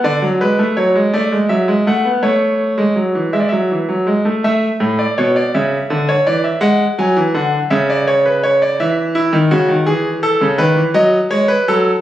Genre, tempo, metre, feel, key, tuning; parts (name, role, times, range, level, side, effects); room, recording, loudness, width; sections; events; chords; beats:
classical, baroque-style two-part invention for grand piano; 55 BPM (dotted quarters); 6/8; straight; A major; A4 = 440 Hz
clear concert grand piano; solo; 0.0-11.9 s; A2 to G#5; -12 LUFS; equal
wet recital hall reverb, RT60 1.3 s; recorded on a phone in the room, studio ambience; -12 LUFS; side -12 dB against mid
0.0-4.4 A section; 4.4-12.0 B section
0.0 Bm7/D; 2.2 A; 3.3 E; 4.4 A; 5.5 C#m; 6.6 E9; 7.7 C#m7; 8.8 C#madd9; 9.9 E; 10.9 D#dim/F#
| 0.04 1.13 | 2.23 3.34 | 4.44 5.53 | 6.62 7.71 | 8.79 9.87 | 10.95